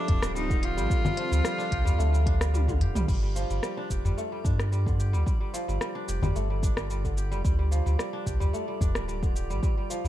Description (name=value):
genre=organic downtempo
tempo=110 BPM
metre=4/4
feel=straight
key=unclear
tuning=A4 = 440 Hz
part: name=bright cello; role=melody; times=0.0-2.5 s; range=D4 to F4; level=-32 LUFS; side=equal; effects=digital delay
part: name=airy breathy pad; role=sustained chords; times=0.0-3.1 s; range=F3 to D5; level=-39 LUFS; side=right 1 dB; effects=chorus, sidechain pumping
part: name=kora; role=arpeggios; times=0.0-10.1 s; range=D3 to G4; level=-34 LUFS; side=right 1 dB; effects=digital delay
part: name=drifting glass-harmonics texture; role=texture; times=0.0-10.1 s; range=F4 to F5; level=-42 LUFS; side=left 1 dB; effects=chorus, built-in reverb
part: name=warm sub bass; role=bass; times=0.1-10.1 s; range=D1 to G2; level=-27 LUFS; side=equal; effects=sidechain pumping
part: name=electronic kick drum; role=drums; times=0.1-9.7 s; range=none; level=-28 LUFS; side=equal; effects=small room reverb
part: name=organic electronic drum kit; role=drums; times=0.1-10.1 s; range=cabasa, congas, crash cymbal, hi-hat, rim click, toms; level=-34 LUFS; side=left 1 dB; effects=small room reverb
part: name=udu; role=percussion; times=0.1-8.9 s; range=none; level=-29 LUFS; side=left 1 dB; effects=none
room=little or no reverb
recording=dark, warm production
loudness=-24 LUFS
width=side -13 dB against mid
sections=0.0-3.1 A section; 3.1-10.1 B section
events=drum fill 2.5-3.1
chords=0.0 Dm7; 3.1 G5; 7.4 Dm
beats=0.35 | 0.90 1.45 1.99 2.54 | 3.08 3.63 4.17 4.72 | 5.26 5.81 6.35 6.90 | 7.45 7.99 8.54 9.08 | 9.63